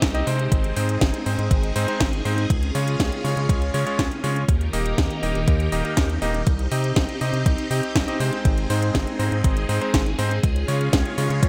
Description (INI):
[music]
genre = italo disco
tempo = 121 BPM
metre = 4/4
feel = straight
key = Ab major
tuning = A4 = 441 Hz
[part]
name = phased string machine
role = sustained chords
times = 0.0-11.5 s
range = Eb3 to Bb4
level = -32 LUFS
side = equal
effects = ensemble chorus, phaser
[part]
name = bright electric grand piano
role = stabs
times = 0.0-11.5 s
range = Ab3 to Eb5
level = -29 LUFS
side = equal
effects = digital delay
[part]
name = round analog bass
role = bass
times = 0.0-11.5 s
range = Eb1 to Db3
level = -27 LUFS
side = equal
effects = none
[part]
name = electronic kick drum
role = drums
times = 0.0-11.5 s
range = none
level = -24 LUFS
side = equal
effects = none
[part]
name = house drum kit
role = drums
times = 0.0-11.5 s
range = hi-hat, snare drum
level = -30 LUFS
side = equal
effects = gated reverb
[sound]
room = light reverb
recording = faint mains hum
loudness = -22 LUFS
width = mono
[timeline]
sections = 0.0-11.5 A section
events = none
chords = 0.0 Cm; 0.5 Ab; 2.5 Db; 4.5 Eb; 6.5 Cm; 8.5 Ab; 10.4 Db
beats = 0.02 | 0.52 1.01 1.51 2.00 | 2.50 3.00 3.49 3.99 | 4.48 4.98 5.48 5.97 | 6.47 6.96 7.46 7.96 | 8.45 8.95 9.44 9.94 | 10.43 10.93 11.43